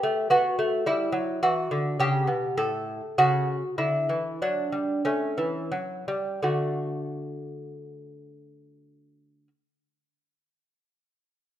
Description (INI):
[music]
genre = classical, baroque-style dance for lute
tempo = 43-54 BPM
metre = 3/4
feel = rubato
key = D major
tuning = A4 = 438 Hz
[part]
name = lute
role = solo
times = 0.0-9.5 s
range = A2 to A4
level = -24 LUFS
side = equal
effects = none
[sound]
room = moderate recital hall reverb, RT60 1.6 s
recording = minimal, uncompressed stereo recording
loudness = -24 LUFS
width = side -11 dB against mid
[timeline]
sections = 0.0-6.4 A section; 6.4-10.5 B section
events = slowing down 0.0-6.4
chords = 0.0 G; 1.4 Em; 2.6 A7sus4; 5.0 A7; 6.4 D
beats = 0.31 1.44 | 2.58 3.78 5.04 | 6.41 7.78 9.14